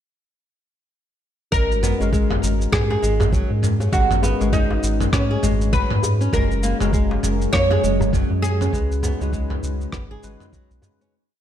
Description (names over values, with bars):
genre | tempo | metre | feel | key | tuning
organic downtempo | 100 BPM | 4/4 | swing 59% on 16ths | G# minor | A4 = 441 Hz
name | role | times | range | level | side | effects
oud | melody | 1.5-10.5 s | C#4 to C#5 | -25 LUFS | right 1 dB | tape echo
bell-like tine electric piano | accompaniment | 1.5-11.2 s | G#3 to B4 | -29 LUFS | left 5 dB | analog chorus, sidechain pumping, tape echo
flamenco guitar | arpeggios | 1.5-11.1 s | F#3 to G#4 | -28 LUFS | left 1 dB | tape echo
round analog bass | bass | 1.5-10.8 s | F#1 to G#2 | -22 LUFS | equal | none
dusty soul sampler-style drum kit | drums | 1.5-11.1 s | rim click, shaker, toms | -26 LUFS | equal | none
electronic kick drum | drums | 1.5-10.7 s | none | -23 LUFS | equal | none
djembe | percussion | 2.3-11.0 s | none | -28 LUFS | equal | none
ethereal airy pad | sustained chords | 7.1-11.1 s | C#3 to G#4 | -29 LUFS | right 2 dB | ensemble chorus, built-in reverb, sidechain pumping
room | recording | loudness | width
light reverb | dark, warm production | -17 LUFS | side -10 dB against mid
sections
1.5-11.1 groove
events
fade-out 7.9-11.1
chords
1.5 G#m11; 6.3 F#; 8.7 C#5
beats
| 1.53 2.13 2.73 3.33 | 3.93 4.53 5.13 5.73 | 6.33 6.93 7.53 8.13 | 8.73 9.33 9.93 10.53